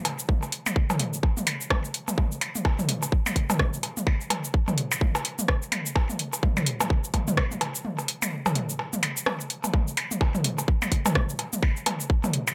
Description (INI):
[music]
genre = techno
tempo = 127 BPM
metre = 4/4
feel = swing 59% on 16ths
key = none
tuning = none
[part]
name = booming analog drum machine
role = drums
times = 0.1-12.5 s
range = cabasa, hi-hat, rim click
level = -31 LUFS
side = equal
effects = none
[part]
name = electronic percussion blips and toms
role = percussion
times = 0.1-12.5 s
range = none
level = -30 LUFS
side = equal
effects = delay
[part]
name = electronic kick drum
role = drums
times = 0.3-12.2 s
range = none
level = -26 LUFS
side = equal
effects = none
[sound]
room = light reverb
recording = none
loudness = -26 LUFS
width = mono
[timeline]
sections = 0.0-12.5 A section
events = kick drops out 7.8-9.7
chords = none